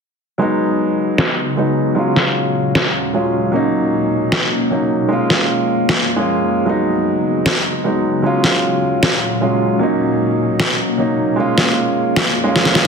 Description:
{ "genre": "future bass", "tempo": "153 BPM", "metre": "4/4", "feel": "half-time", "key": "unclear", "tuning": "A4 = 440 Hz", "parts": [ { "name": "dark baby grand piano", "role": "accompaniment", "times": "0.4-12.9 s", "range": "Gb3 to F4", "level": "-17 LUFS", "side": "right 1 dB", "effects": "digital delay" }, { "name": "ethereal airy pad", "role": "sustained chords", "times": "0.9-12.9 s", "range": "Eb2 to Ab4", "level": "-21 LUFS", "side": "left 1 dB", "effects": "ensemble chorus, built-in reverb" }, { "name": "electronic snare drum", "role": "drums", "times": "1.2-12.8 s", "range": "none", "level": "-16 LUFS", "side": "equal", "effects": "low-pass filter on snare, studio reverb" } ], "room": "moderate digital room reverb, RT60 1.0 s, small room ambience", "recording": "dense, heavily limited modern master", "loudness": "-14 LUFS", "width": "side -5 dB against mid", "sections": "0.4-12.9 A section", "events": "filter sweep on ambient pad 0.4-12.9; drum fill 12.6-12.9", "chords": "0.4 Db9sus4; 2.0 Ebm11; 3.5 Bmaj9; 5.1 Gbmaj9; 6.7 Db9sus4; 8.2 Ebm11; 9.8 Bmaj9; 11.4 Gbmaj9" }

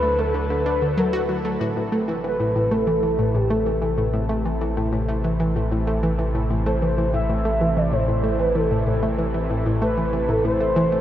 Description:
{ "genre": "ambient, sequencer-driven space music", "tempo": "95 BPM", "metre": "4/4", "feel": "straight", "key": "A dorian", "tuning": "A4 = 441 Hz", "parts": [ { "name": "expressive synth lead", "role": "melody", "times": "0.0-11.0 s", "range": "G4 to E5", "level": "-24 LUFS", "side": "equal", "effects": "lush chorus, ping-pong delay" }, { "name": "lush unison pad", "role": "sustained chords", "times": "0.0-11.0 s", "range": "C3 to A4", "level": "-29 LUFS", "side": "equal", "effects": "chorus" }, { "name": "analog pluck", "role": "riff", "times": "0.0-11.0 s", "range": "A2 to F#4", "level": "-23 LUFS", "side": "equal", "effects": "chorus, ping-pong delay" }, { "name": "warm sub bass", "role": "bass", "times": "0.0-11.0 s", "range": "A1 to D2", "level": "-27 LUFS", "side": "equal", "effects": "none" } ], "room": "wet huge ambient reverb, RT60 7.6 s", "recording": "worn, warbling old tape, cassette tape, warbly pitch drift", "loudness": "-19 LUFS", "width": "side -11 dB against mid", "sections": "0.0-11.0 A section", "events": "none", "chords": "0.0 Dadd9; 1.6 Am" }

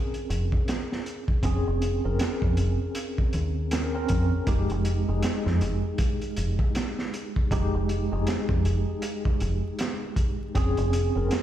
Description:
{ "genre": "trip hop", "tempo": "79 BPM", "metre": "4/4", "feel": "swing 60% on 16ths", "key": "F minor", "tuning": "A4 = 440 Hz", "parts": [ { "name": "tine electric piano", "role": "accompaniment", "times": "0.0-11.4 s", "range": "Ab3 to Bb4", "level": "-30 LUFS", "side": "right 1 dB", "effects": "medium stereo tremolo, tape echo" }, { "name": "crunchy breakbeat drum kit", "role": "drums", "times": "0.1-11.4 s", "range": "hi-hat, kick drum, snare drum", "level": "-28 LUFS", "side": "equal", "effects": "vintage 12-bit sampler grit" }, { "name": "deep dub fingered electric bass", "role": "bass", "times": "0.3-11.3 s", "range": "F1 to F2", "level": "-26 LUFS", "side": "equal", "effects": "tube saturation" } ], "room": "small room ambience", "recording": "played on a big sound system in a bare room, stone room reverb, vinyl crackle", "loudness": "-24 LUFS", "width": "side -12 dB against mid", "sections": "0.0-11.4 A section", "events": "none", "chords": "0.0 Bbm7/F; 4.5 Fm9; 10.5 Bbm7/F" }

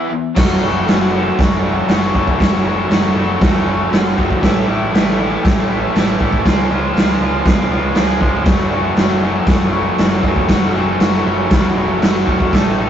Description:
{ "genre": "garage rock duo or trio", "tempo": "118 BPM", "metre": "4/4", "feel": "straight", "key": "F# minor", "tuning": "A4 = 440 Hz", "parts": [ { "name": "raw garage guitar", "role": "riff", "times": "0.0-12.9 s", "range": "F#2 to A4", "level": "-17 LUFS", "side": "equal", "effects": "overdrive" }, { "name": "growling picked electric bass", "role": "bass", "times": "0.4-12.9 s", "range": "F#1 to B2", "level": "-24 LUFS", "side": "equal", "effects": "overdrive" }, { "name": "raw garage drum kit", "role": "drums", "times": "0.4-12.7 s", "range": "crash cymbal, kick drum, snare drum", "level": "-14 LUFS", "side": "equal", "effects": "none" } ], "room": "light reverb", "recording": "rough rehearsal-room recording, tube saturation, nothing above 7.7 kHz", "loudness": "-12 LUFS", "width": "side -9 dB against mid", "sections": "0.4-12.9 A section", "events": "break 0.0-0.4", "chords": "0.4 F#m; 4.4 A; 6.4 C#; 8.5 F#m" }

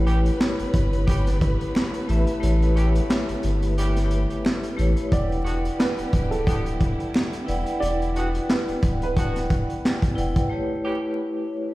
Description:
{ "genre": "hip hop, boom-bap hip-hop", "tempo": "89 BPM", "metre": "4/4", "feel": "swing 56% on 16ths", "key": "unclear", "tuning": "A4 = 440 Hz", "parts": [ { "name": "vibraphone with hard mallets", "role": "accompaniment", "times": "0.0-11.7 s", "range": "A3 to G5", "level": "-27 LUFS", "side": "left 1 dB", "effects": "cassette tape, high-pass filter, low-pass filter" }, { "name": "warm studio string section", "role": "sustained chords", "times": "0.0-10.5 s", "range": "C#3 to B4", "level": "-35 LUFS", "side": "equal", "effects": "high-pass filter, low-pass filter" }, { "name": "saturated sub bass", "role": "bass", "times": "0.0-10.3 s", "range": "D1 to A1", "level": "-23 LUFS", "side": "equal", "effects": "none" }, { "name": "bright saxophone section", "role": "stabs", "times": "0.1-11.0 s", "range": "D3 to G4", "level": "-36 LUFS", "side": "right 1 dB", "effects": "high-pass filter, low-pass filter, ping-pong delay" }, { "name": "crunchy breakbeat drum kit", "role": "drums", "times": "0.1-10.5 s", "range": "handclaps, hi-hat, kick drum, snare drum", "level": "-24 LUFS", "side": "equal", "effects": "none" }, { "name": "finger snap", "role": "percussion", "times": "0.4-7.3 s", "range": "none", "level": "-44 LUFS", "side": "right 3 dB", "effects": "none" }, { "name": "dark upright piano", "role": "melody", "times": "5.1-9.8 s", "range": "A4 to D5", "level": "-30 LUFS", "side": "right 3 dB", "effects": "high-pass filter, low-pass filter, ping-pong delay" } ], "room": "light reverb", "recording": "played on a big sound system in a bare room, stone room reverb, vinyl crackle", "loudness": "-20 LUFS", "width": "side -18 dB against mid", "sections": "0.0-11.7 A section", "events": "kick muted 2.4-5.1", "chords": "0.0 A9; 5.1 Em9; 10.5 A9" }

